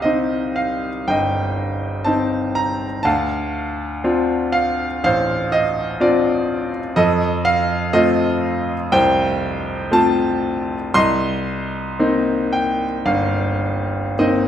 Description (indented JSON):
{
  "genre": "classical, lyrical solo piano",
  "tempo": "51-63 BPM",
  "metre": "4/4",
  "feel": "rubato",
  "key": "C dorian",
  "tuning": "A4 = 439 Hz",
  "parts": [
    { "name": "bright baby grand piano", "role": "solo", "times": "0.0-14.5 s", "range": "G1 to C6", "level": "-17 LUFS", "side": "equal", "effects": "none" }
  ],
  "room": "moderate recital hall reverb, RT60 1.4 s",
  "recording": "recorded in a church or concert hall",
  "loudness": "-17 LUFS",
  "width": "side -10 dB against mid",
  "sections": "0.0-14.5 A section",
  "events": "grand piano fill 12.0-14.5",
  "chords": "0.0 Cm; 3.0 Dm7; 7.0 F; 10.9 Cm7"
}